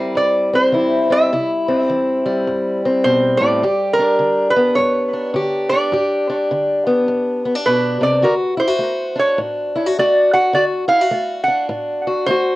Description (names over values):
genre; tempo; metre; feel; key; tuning
acoustic country blues, solo or duo; 104 BPM; 4/4; swing 62% on 8ths; G major; A4 = 440 Hz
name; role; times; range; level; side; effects
lap resonator guitar; melody; 0.0-12.6 s; Bb4 to F#5; -17 LUFS; right 1 dB; cassette tape, analog delay
fingerpicked acoustic archtop guitar; accompaniment; 0.0-12.6 s; G2 to G4; -18 LUFS; left 1 dB; cassette tape
room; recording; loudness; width
moderate studio reverb, RT60 0.6 s; home recording on cassette; -14 LUFS; side -18 dB against mid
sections
0.0-12.6 A section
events
none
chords
0.0 C; 3.6 G; 8.2 D